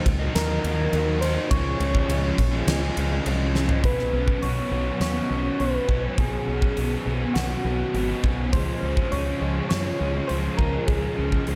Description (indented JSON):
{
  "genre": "rock, shoegaze and dream pop",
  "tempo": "102 BPM",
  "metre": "4/4",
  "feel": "straight",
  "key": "unclear",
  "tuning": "A4 = 441 Hz",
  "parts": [
    { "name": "overdriven electric guitar", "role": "riff", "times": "0.0-11.6 s", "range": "Cb3 to Eb4", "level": "-29 LUFS", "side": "equal", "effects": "subtle chorus" },
    { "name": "growling fingered electric bass", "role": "bass", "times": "0.1-11.6 s", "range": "Ab1 to Gb2", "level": "-29 LUFS", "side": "equal", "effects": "overdrive" },
    { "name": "huge arena drum kit", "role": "drums", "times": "0.1-11.6 s", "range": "hi-hat, kick drum, ride cymbal, snare drum, toms", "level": "-29 LUFS", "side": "equal", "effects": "none" },
    { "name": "soft struck synth lead", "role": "melody", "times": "0.4-11.6 s", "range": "Gb4 to Db5", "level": "-32 LUFS", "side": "equal", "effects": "chorus, diffuse ambient delay" }
  ],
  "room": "moderate plate reverb, RT60 2.0 s",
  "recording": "dreamy mix soaked in reverb",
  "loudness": "-24 LUFS",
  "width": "mono",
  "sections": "0.0-3.8 A section; 3.8-11.6 B section",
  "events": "drum fill 3.5",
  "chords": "0.0 Ebm7; 1.5 Db; 3.8 Cbsus2; 8.5 Dbmaj7"
}